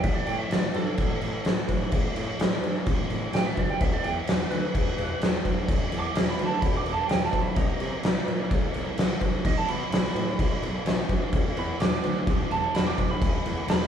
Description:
blues rock power trio and southern rock; 128 BPM; 4/4; straight; E minor; A4 = 443 Hz
lightly driven lead guitar; second line; 0.0-13.9 s; A4 to D6; -32 LUFS; right 5 dB
fuzz picked electric bass; bass; 0.0-13.8 s; E1 to B#2; -33 LUFS; equal; overdrive
oversized low-tuned drum kit; drums; 0.0-13.8 s; crash cymbal, kick drum, snare drum; -24 LUFS; equal
light reverb; band playing live in one room; -23 LUFS; side -8 dB against mid
0.0-13.9 A section
lead electric guitar solo 0.0-13.9
0.0 N.C.; 3.8 E5; 7.6 A#sus2/B#; 9.4 B5; 11.3 E5

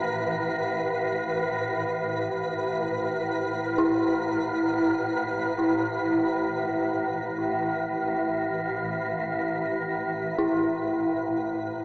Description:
dark ambient drone; free time; A4 = 440 Hz
swarming drone; drone; 0.0-11.8 s; A1 to A2; -26 LUFS; equal; built-in reverb
flickering grainy texture; texture; 0.0-11.8 s; B4; -32 LUFS; equal; built-in reverb
dark detuned synth bell; arpeggios; 3.8-11.8 s; E4; -29 LUFS; left 1 dB; chorus, analog delay
wet plate reverb, RT60 2.5 s; echo-heavy mix, small speaker sound; -24 LUFS; side -25 dB against mid
0.0-11.8 A section
fade-out on synth texture 0.0-11.8
0.0 Asus2

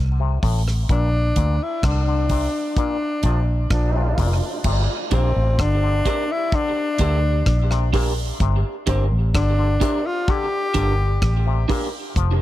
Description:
dub reggae; 64 BPM; 4/4; straight; G dorian; A4 = 445 Hz
vintage muted fingered electric bass; bass; 0.0-12.4 s; F1 to D2; -19 LUFS; equal
auto-wah clav; arpeggios; 0.2-12.4 s; A2 to F3; -30 LUFS; left 9 dB; tape echo
damped 70s drum kit; drums; 0.4-12.4 s; crash cymbal, hi-hat, kick drum, rim click; -24 LUFS; equal
breathy tenor saxophone; melody; 0.9-11.7 s; C4 to G4; -24 LUFS; left 2 dB; tape echo
mellow trombone section; second line; 3.2-4.6 s; Bb2 to D4; -29 LUFS; right 2 dB; tape echo
electric guitar through a small old amp; accompaniment; 5.1-11.9 s; D4 to Bb4; -29 LUFS; right 6 dB; analog chorus, tape echo
small room ambience; echo-heavy mix; -18 LUFS; side -14 dB against mid
0.0-4.6 A section; 4.6-12.4 B section
break 0.0-4.6; band accent 0.9-4.6
0.0 F (rootless); 0.9 Bb; 4.6 Gm

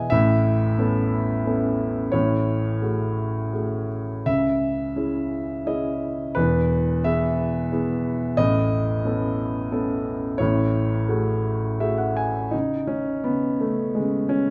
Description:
classical, lyrical solo piano; 80-91 BPM; 3/4; rubato; F# dorian; A4 = 440 Hz
dark grand piano; solo; 0.0-14.5 s; E1 to G#5; -23 LUFS; equal
moderate scoring stage reverb, RT60 1.6 s; -23 LUFS; mono
0.0-12.5 A section; 12.5-14.5 B section
grand piano fill 11.4-12.5
0.1 Aadd9; 2.1 F#madd9/A; 4.3 C#m; 6.4 E; 8.4 Aadd9; 10.4 F#madd9/A; 12.5 N.C.

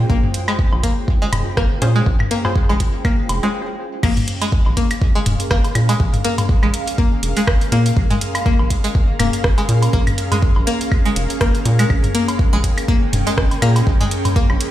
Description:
minimal techno; 122 BPM; 4/4; swing 56% on 16ths; Bb dorian; A4 = 440 Hz
rubbery square bass; bass; 0.0-14.6 s; F1 to Bb2; -18 LUFS; equal; tube saturation, sidechain pumping
ethereal airy pad; texture; 0.0-14.7 s; Db4 to G5; -26 LUFS; right 1 dB; ensemble chorus, built-in reverb, sidechain pumping
flickering grainy texture; texture; 0.0-3.5 s; F4; -38 LUFS; right 4 dB
string-like resonator pluck; riff; 0.1-14.5 s; Ab3 to Bb3; -22 LUFS; left 2 dB; chorus, phaser, sidechain pumping, tape echo
electronic kick drum; drums; 0.1-14.5 s; -17 LUFS; equal; studio reverb
electronic toms and woodblock; percussion; 0.2-14.6 s; -23 LUFS; left 1 dB; studio reverb, digital delay
garage drum kit; drums; 0.3-14.7 s; crash cymbal, hi-hat, rim click; -25 LUFS; right 2 dB; overdrive, studio reverb
filtered dub chord stab; stabs; 1.8-3.5 s; Db4 to C5; -27 LUFS; left 2 dB; chorus, digital delay
light reverb; played on a big sound system in a bare room, stone room reverb; -14 LUFS; side -13 dB against mid
0.0-4.0 A section; 4.0-14.7 B section
break 3.5-4.0; drop 4.0-14.7
0.0 Bbm7

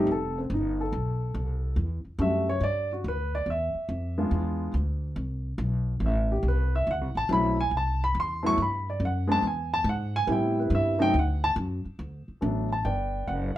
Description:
jazz piano trio; 141 BPM; 4/4; swing 68% on 8ths; G major; A4 = 437 Hz
dark baby grand piano; melody; 0.0-13.6 s; F#3 to C#6; -27 LUFS; equal
upright bass; bass; 0.0-13.5 s; F1 to A2; -28 LUFS; equal
wet studio reverb, RT60 0.5 s; heard from further back in the room; -25 LUFS; side -14 dB against mid
0.0-12.0 A section; 12.0-13.6 B section
grand piano solo 0.0-12.0
0.1 Fadd9; 1.8 Em9; 3.5 E7b9; 5.2 Amadd9; 6.9 D9 (rootless); 8.6 Gmaj7; 9.4 E; 10.3 Am7; 11.1 D; 12.0 Gmaj9

